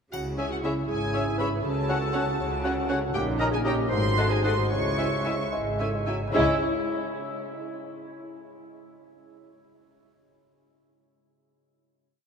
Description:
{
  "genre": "cinematic, playful, whimsical film cue",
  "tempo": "72-80 BPM (dotted quarters)",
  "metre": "6/8",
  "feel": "straight",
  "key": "C# minor",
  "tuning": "A4 = 440 Hz",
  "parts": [
    { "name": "rich studio violin section", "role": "melody", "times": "0.1-6.6 s", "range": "E4 to C#6", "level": "-33 LUFS", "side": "right 1 dB", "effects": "none" },
    { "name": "mellow clarinet", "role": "second line", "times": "0.1-6.6 s", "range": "E4 to C#5", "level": "-33 LUFS", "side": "right 2 dB", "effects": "none" },
    { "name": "mellow French horn section", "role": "sustained chords", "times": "0.1-6.6 s", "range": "G#3 to F#4", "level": "-33 LUFS", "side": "equal", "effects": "stereo widening" },
    { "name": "concert harp", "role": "arpeggios", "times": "0.1-8.0 s", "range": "G#2 to G#5", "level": "-34 LUFS", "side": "left 2 dB", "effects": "none" },
    { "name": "clear studio double bass section", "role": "bass", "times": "0.1-6.6 s", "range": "G#1 to C#2", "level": "-33 LUFS", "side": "equal", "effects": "none" },
    { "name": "rich studio cello section", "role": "bass", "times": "0.1-6.6 s", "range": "G#2 to C#3", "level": "-32 LUFS", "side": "equal", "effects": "none" },
    { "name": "triangle", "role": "percussion", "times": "0.1-1.1 s", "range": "none", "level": "-51 LUFS", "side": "left 6 dB", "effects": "none" },
    { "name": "clear oboe", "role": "second line", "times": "0.4-6.6 s", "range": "D#5 to F#5", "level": "-35 LUFS", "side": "left 3 dB", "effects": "none" },
    { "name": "rich studio violin section", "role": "second line", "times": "0.4-6.6 s", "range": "C#4 to A#5", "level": "-36 LUFS", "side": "left 1 dB", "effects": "none" },
    { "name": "dark bassoon", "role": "accompaniment", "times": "0.4-6.6 s", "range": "F#3 to C#4", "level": "-35 LUFS", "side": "equal", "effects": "none" },
    { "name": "rich studio viola section", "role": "accompaniment", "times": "0.4-6.6 s", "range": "G#3 to G#4", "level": "-36 LUFS", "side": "right 3 dB", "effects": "none" }
  ],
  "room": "wet cathedral reverb, RT60 5.5 s",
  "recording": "in a vast, echoing space",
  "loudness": "-24 LUFS",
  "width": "side -6 dB against mid",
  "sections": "0.1-6.3 A section; 6.3-7.9 final chord",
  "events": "none",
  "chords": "0.1 C#m; 1.6 F#m/C#; 3.1 D#5/A#; 3.9 G#7b9; 4.7 C#m"
}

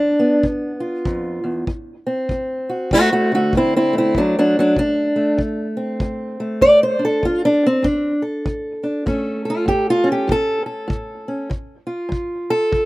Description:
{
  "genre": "acoustic country blues, solo or duo",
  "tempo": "98 BPM",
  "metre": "4/4",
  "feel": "swing 61% on 8ths",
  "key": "unclear",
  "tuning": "A4 = 439 Hz",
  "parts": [
    { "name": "fingerpicked steel-string acoustic guitar", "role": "melody", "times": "0.0-12.9 s", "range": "D2 to D5", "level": "-16 LUFS", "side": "equal", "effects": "slapback echo" },
    { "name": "kick drum", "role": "drums", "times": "0.4-12.9 s", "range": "none", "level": "-25 LUFS", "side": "equal", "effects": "none" }
  ],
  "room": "little or no reverb",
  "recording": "recorded outdoors, with no room sound",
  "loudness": "-16 LUFS",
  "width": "side -19 dB against mid",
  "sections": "0.0-12.9 A section",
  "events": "steel-string acoustic guitar solo 0.0-12.9",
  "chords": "0.0 G7; 1.7 D7(no3); 9.1 A; 11.5 G7sus2"
}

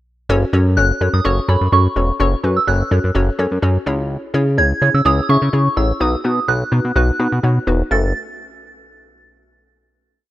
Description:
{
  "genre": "pop",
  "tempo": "126 BPM",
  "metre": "4/4",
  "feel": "straight",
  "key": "F# dorian",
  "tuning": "A4 = 440 Hz",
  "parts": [
    { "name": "hollow square pluck", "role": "accompaniment", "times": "0.3-8.1 s", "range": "A3 to E5", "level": "-21 LUFS", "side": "left 1 dB", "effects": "chorus" },
    { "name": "chorused synth bass", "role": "bass", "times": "0.3-8.1 s", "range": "E1 to C#3", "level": "-16 LUFS", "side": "equal", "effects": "none" },
    { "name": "soft synth bell", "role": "melody", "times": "0.8-8.1 s", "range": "B5 to A6", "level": "-19 LUFS", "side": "right 2 dB", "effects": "chorus, phaser, digital delay" }
  ],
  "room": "light reverb",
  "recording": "rough home demo mix, faint mains hum",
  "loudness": "-14 LUFS",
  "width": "side -14 dB against mid",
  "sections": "0.3-7.9 verse; 7.9-9.8 final chord",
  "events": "none",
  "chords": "0.3 F#m; 3.9 C#m; 6.0 B; 7.9 F#m"
}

